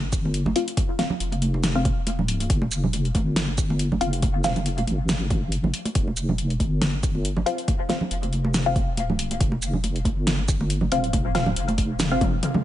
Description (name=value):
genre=deep dubstep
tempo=139 BPM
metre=4/4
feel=swing 55% on 16ths, half-time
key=unclear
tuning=A4 = 440 Hz
part: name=deep soft wobble bass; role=bass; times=0.0-12.4 s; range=Eb1 to G1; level=-25 LUFS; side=equal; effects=chorus
part: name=deep house drum kit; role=drums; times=0.1-12.6 s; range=hi-hat, shaker, snare drum, toms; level=-28 LUFS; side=equal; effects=none
part: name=electronic kick drum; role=drums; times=0.1-12.3 s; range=none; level=-24 LUFS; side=equal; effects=none
part: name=congas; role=percussion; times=0.3-12.6 s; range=none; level=-29 LUFS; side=right 2 dB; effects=dub echo
part: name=filtered dub chord stab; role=stabs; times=0.6-4.6, 7.5-12.2 s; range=C4 to F5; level=-28 LUFS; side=left 2 dB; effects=phaser, analog chorus, cassette tape, dub echo
room=light reverb, digital ambience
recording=nothing above 10.8 kHz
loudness=-21 LUFS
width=side -13 dB against mid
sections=0.0-12.6 A section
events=drum fill 12.2-12.6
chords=0.0 F5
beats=0.34 | 0.77 1.20 1.64 2.07 | 2.50 2.93 3.36 3.79 | 4.23 4.66 5.09 5.52 | 5.95 6.38 6.82 7.25 | 7.68 8.11 8.54 8.97 | 9.41 9.84 10.27 10.70 | 11.13 11.56 12.00 12.43